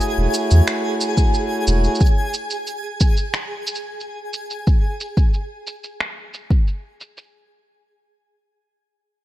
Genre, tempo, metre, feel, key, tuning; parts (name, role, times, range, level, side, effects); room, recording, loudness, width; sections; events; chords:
folktronica; 90 BPM; 4/4; straight; A major; A4 = 440 Hz
hand-pumped harmonium; sustained chords; 0.0-2.0 s; A3 to C#5; -24 LUFS; right 1 dB
electronic shaker and finger snaps; drums; 0.0-7.3 s; -26 LUFS; right 1 dB; low-pass filter on hats, low-pass filter on perc, low-pass filter on snare
twinkling granular texture; texture; 0.0-4.7 s; G#4 to G#5; -27 LUFS; equal; built-in reverb
warm sub bass; bass; 0.2-1.9 s; E1 to E2; -14 LUFS; equal
electronic kick drum; drums; 1.2-6.6 s; -16 LUFS; equal
light reverb, small room ambience; -17 LUFS; side -14 dB against mid
0.0-7.3 A section
0.0 A6